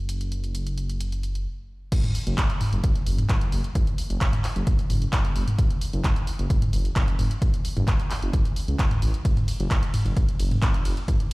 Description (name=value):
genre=driving peak-time techno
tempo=131 BPM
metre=4/4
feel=straight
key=F# minor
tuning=A4 = 440 Hz
part: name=dark detuned saw bass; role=bass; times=0.0-10.9 s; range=F#1 to C#2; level=-26 LUFS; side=equal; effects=sidechain pumping
part: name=techno drum kit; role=drums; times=0.1-11.3 s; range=crash cymbal, handclaps, hi-hat, ride cymbal, toms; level=-28 LUFS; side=equal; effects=overdrive, studio reverb
part: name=electronic kick drum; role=drums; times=1.9-11.2 s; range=none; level=-23 LUFS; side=equal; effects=studio reverb
room=little or no reverb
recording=played on a big sound system in a bare room, large studio reverb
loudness=-22 LUFS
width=side -23 dB against mid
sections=0.0-1.9 A section; 1.9-11.3 B section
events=stop 1.5-1.9; drop 1.9-11.3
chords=none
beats=| 0.09 0.55 1.00 1.46 | 1.92 2.38 2.84 3.29 | 3.75 4.21 4.67 5.13 | 5.58 6.04 6.50 6.96 | 7.42 7.88 8.33 8.79 | 9.25 9.71 10.16 10.62 | 11.08